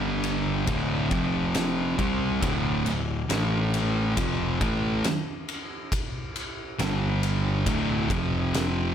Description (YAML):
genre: stoner and doom metal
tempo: 69 BPM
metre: 4/4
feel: straight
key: unclear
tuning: A4 = 440 Hz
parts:
  - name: thick fuzz guitar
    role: riff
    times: 0.0-8.9 s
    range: D2 to C4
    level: -28 LUFS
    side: left 8 dB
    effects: distortion
  - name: thick fuzz guitar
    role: riff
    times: 0.0-8.9 s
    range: D2 to C4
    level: -28 LUFS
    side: right 8 dB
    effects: distortion
  - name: picked electric bass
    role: bass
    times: 0.0-8.9 s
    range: D1 to C2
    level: -32 LUFS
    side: equal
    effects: overdrive
  - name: oversized low-tuned drum kit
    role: drums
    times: 0.2-8.8 s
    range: kick drum, ride cymbal, snare drum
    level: -30 LUFS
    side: equal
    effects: none
room: light reverb, small room ambience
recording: none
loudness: -24 LUFS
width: side -9 dB against mid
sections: 0.0-8.9 A section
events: none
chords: 0.0 G5; 0.7 D5; 1.1 F5; 2.0 D5; 3.3 A5; 4.2 Fmaj7; 6.8 G5; 7.7 D5; 8.1 F5